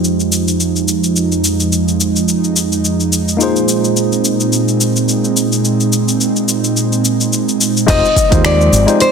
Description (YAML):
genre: sunset chillout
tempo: 107 BPM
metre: 4/4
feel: swing 56% on 16ths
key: F minor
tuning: A4 = 440 Hz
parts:
  - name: tine electric piano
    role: accompaniment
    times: 0.0-9.0 s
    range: Ab3 to C5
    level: -20 LUFS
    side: moving between left 6 dB and right 4 dB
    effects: auto-pan, low-pass filter, digital delay
  - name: airy breathy pad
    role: sustained chords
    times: 0.0-9.1 s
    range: F2 to Eb4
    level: -14 LUFS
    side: right 3 dB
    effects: chorus
  - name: smooth R&B drum kit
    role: drums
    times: 0.0-9.1 s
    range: cabasa, crash cymbal, finger snaps, hi-hat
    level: -18 LUFS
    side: left 3 dB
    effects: studio ambience, soft clipping on snare
  - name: nylon-string guitar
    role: melody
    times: 7.9-9.1 s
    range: C5 to Eb5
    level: -13 LUFS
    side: left 2 dB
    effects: ping-pong delay
  - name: fingered electric bass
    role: bass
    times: 7.9-8.8 s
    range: F1 to Eb2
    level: -14 LUFS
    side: equal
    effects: none
  - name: electronic kick drum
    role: drums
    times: 7.9-8.4 s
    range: none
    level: -15 LUFS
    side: equal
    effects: overdrive, studio ambience
room: moderate lush hall reverb, RT60 2.5 s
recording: dense, heavily limited modern master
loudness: -11 LUFS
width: side -6 dB against mid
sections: 0.0-7.9 A section; 7.9-9.1 B section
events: filter sweep on tine electric piano 0.0-7.9; filter sweep on analog synth pad 0.0-7.9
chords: 0.0 Fm7; 3.4 Bb9sus4; 7.9 Fm7